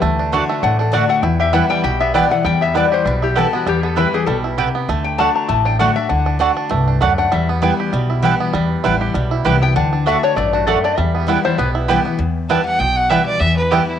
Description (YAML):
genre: bluegrass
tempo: 197 BPM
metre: 4/4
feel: swing 55% on 8ths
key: E minor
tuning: A4 = 441 Hz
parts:
  - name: picked steel-string acoustic guitar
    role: accompaniment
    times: 0.0-14.0 s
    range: E2 to F#4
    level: -21 LUFS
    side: left 5 dB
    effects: cassette tape
  - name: bluegrass banjo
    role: arpeggios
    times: 0.0-13.8 s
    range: D3 to G4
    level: -22 LUFS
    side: right 7 dB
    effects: cassette tape
  - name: upright bass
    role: bass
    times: 0.0-13.8 s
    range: A1 to E2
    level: -20 LUFS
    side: equal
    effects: none
  - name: mandolin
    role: stabs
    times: 0.3-13.8 s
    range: A3 to G5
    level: -20 LUFS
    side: right 7 dB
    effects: cassette tape
  - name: lap resonator guitar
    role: second line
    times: 0.6-7.5, 9.6-11.7 s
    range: F#4 to A#5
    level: -19 LUFS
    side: left 8 dB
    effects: cassette tape
  - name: clear fiddle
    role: melody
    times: 12.5-14.0 s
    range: E4 to A5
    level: -17 LUFS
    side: right 1 dB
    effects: cassette tape
room: light reverb, small room ambience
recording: home recording on cassette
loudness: -14 LUFS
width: side -9 dB against mid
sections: 0.0-2.4 A section; 2.4-12.2 A section; 12.2-14.0 A section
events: resonator guitar played with a steel bar solo 0.0-12.2; fiddle solo 12.2-14.0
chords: 0.0 D; 1.2 Em; 4.9 D; 7.3 Em; 9.8 D; 11.0 Em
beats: | 0.02 0.32 0.63 0.93 | 1.23 1.54 1.84 2.15 | 2.45 2.75 3.06 3.36 | 3.67 3.97 4.28 4.58 | 4.88 5.19 5.49 5.80 | 6.10 6.41 6.71 7.02 | 7.32 7.63 7.93 8.24 | 8.54 8.85 9.15 9.46 | 9.76 10.06 10.37 10.67 | 10.98 11.28 11.59 11.89 | 12.20 12.50 12.80 13.11 | 13.41 13.72